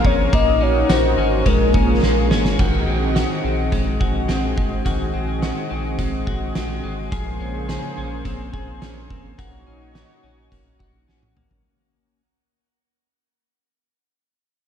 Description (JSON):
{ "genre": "dream pop", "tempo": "106 BPM", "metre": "4/4", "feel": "straight", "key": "unclear", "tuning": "A4 = 445 Hz", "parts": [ { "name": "warm velvety synth lead", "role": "melody", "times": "0.0-2.3 s", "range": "Bb4 to Eb5", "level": "-23 LUFS", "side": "left 2 dB", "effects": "chorus, ping-pong delay" }, { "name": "lush unison pad", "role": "sustained chords", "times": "0.0-11.6 s", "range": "Db3 to Eb5", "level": "-26 LUFS", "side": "right 1 dB", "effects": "chorus" }, { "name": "clean electric guitar", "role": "arpeggios", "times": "0.0-12.2 s", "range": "Eb3 to Ab4", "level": "-25 LUFS", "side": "left 5 dB", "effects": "analog chorus, ping-pong delay" }, { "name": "warm sub bass", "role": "bass", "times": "0.0-11.6 s", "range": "Ab1 to Bb1", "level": "-24 LUFS", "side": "equal", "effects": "none" }, { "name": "oversized low-tuned drum kit", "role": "drums", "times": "0.0-11.6 s", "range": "crash cymbal, hi-hat, kick drum, ride cymbal, snare drum, tambourine, toms", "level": "-22 LUFS", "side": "right 1 dB", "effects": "none" } ], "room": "light reverb, small room ambience", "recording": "dark, warm production", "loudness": "-17 LUFS", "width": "side -8 dB against mid", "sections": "0.0-2.6 A section; 2.6-11.6 B section", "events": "drum fill 2.0-2.6, 11.1-11.6; fade-out 2.6-11.6", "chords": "0.3 Ebm7/Bb; 1.5 Bbm7; 2.6 Ab7; 7.1 Bbm9; 9.4 Ebm7/Bb", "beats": "| 0.33 0.89 1.46 2.03 | 2.59 3.16 3.73 4.29 | 4.86 5.42 5.99 6.55 | 7.12 7.69 8.25 8.82 | 9.38 9.95 10.52 11.08" }